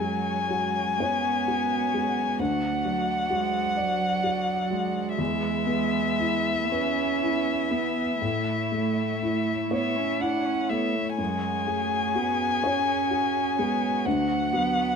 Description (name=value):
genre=neoclassical piano and strings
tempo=38-43 BPM (dotted quarters)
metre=6/8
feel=rubato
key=F# minor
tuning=A4 = 440 Hz
part: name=muted violin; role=melody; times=0.0-15.0 s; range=E5 to G#5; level=-27 LUFS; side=left 4 dB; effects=none
part: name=muted cello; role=second line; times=0.0-15.0 s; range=F#3 to D4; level=-29 LUFS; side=right 10 dB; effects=none
part: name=dark upright piano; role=accompaniment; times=0.0-15.0 s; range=D2 to D5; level=-29 LUFS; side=left 2 dB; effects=none
part: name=muted chamber string section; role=sustained chords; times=0.0-15.0 s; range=F#3 to F#5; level=-37 LUFS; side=right 2 dB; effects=none
room=moderate large studio reverb, RT60 0.9 s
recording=minimal, uncompressed stereo recording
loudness=-23 LUFS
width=side -6 dB against mid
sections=0.0-15.0 A section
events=none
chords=0.0 F#sus2; 2.4 D; 5.2 E; 8.2 A; 11.2 F#sus2; 14.1 D